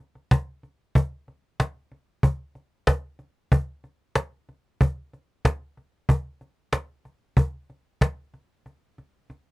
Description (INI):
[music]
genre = rock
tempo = 94 BPM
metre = 4/4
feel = straight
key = none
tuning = none
[part]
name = cajon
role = drums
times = 0.2-9.4 s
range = none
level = -19 LUFS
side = equal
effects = none
[sound]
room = moderate booth ambience, RT60 0.3 s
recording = dry, close 1970s-style studio recording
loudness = -24 LUFS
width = side -23 dB against mid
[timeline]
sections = 0.0-9.5 A section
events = break 8.7-9.5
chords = none